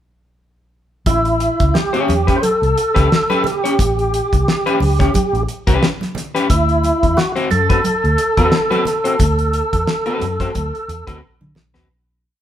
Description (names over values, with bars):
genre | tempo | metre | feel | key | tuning
funk | 89 BPM | 4/4 | swing 56% on 16ths | A mixolydian | A4 = 445 Hz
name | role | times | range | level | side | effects
percussive tonewheel organ | melody | 1.1-11.2 s | E4 to C5 | -17 LUFS | right 1 dB | overdrive, chorus vibrato, slow rotary speaker
vintage muted fingered electric bass | bass | 1.1-11.9 s | A1 to D3 | -19 LUFS | equal | none
damped 70s drum kit | drums | 1.1-11.9 s | hi-hat, kick drum, snare drum | -19 LUFS | equal | none
congas | percussion | 1.1-11.7 s | none | -26 LUFS | right 2 dB | none
electric guitar at the edge of break-up | accompaniment | 1.9-11.9 s | C4 to C#5 | -20 LUFS | left 3 dB | none
room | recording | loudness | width
light reverb | band playing live in one room | -14 LUFS | side -10 dB against mid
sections
1.1-11.9 groove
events
fade-out 9.2-11.9; drum fill 11.2-11.9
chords
1.1 A9; 6.5 D13